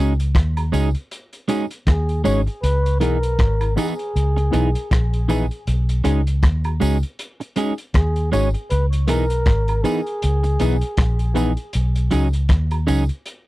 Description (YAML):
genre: lovers rock reggae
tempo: 79 BPM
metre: 4/4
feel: swing 57% on 16ths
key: B major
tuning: A4 = 440 Hz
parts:
  - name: tine electric piano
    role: accompaniment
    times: 0.0-13.0 s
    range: B3 to G#4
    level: -25 LUFS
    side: left 4 dB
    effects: wide subtle chorus
  - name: electric guitar at the edge of break-up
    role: stabs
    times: 0.0-13.0 s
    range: E3 to G#4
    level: -22 LUFS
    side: right 4 dB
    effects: none
  - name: vintage muted fingered electric bass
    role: bass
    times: 0.0-13.1 s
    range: G#1 to D#2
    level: -19 LUFS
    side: equal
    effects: none
  - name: crunchy breakbeat drum kit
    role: drums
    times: 0.2-13.5 s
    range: hi-hat, kick drum, rim click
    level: -20 LUFS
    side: equal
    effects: none
  - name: woodblock and tambourine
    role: percussion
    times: 0.6-13.1 s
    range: none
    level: -35 LUFS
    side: right 4 dB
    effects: none
  - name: breathy flugelhorn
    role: melody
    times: 1.9-11.4 s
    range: G#4 to C#5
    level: -26 LUFS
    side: equal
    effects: tape echo
room: little or no reverb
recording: dry, close 1970s-style studio recording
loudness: -17 LUFS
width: side -18 dB against mid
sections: 0.0-13.5 A section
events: none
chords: 0.0 B69 (rootless); 2.6 C#m9; 5.7 B69 (rootless); 8.7 C#m9; 11.7 B69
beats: 0.35 1.11 1.87 | 2.63 3.39 4.15 4.91 | 5.67 6.43 7.19 7.95 | 8.70 9.46 10.22 10.98 | 11.73 12.49 13.25